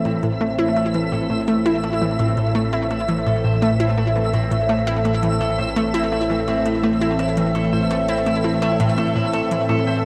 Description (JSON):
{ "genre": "ambient, sequencer-driven space music", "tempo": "84 BPM", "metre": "4/4", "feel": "straight", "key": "A minor", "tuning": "A4 = 444 Hz", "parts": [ { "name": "phased analog pad", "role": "sustained chords", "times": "0.0-10.1 s", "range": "A2 to E5", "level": "-23 LUFS", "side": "equal", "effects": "phaser, chorus, shimmer reverb" }, { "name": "electric guitar at the edge of break-up", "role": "arpeggios", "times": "0.0-10.0 s", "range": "A3 to C5", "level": "-36 LUFS", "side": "equal", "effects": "delay, shimmer reverb" }, { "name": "round analog bass", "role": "bass", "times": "0.0-10.1 s", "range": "A1", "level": "-38 LUFS", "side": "equal", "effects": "none" }, { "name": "twinkling granular texture", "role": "texture", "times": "0.0-10.1 s", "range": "E5", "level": "-30 LUFS", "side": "equal", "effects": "built-in reverb, ensemble chorus, shimmer reverb" }, { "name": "analog pluck", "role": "riff", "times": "0.1-10.0 s", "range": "A2 to E4", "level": "-24 LUFS", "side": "equal", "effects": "chorus, delay, shimmer reverb" }, { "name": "electronic hi-hat and percussion blips", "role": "percussion", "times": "0.1-9.8 s", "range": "none", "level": "-43 LUFS", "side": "equal", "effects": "none" } ], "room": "wet huge ambient reverb, RT60 7.8 s", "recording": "dreamy mix soaked in reverb, cassette tape", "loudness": "-20 LUFS", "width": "mono", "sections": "0.0-10.1 A section", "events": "fade-in on clean electric guitar 0.0-10.1; fade-in on analog synth bass 0.0-10.1", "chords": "0.0 Am" }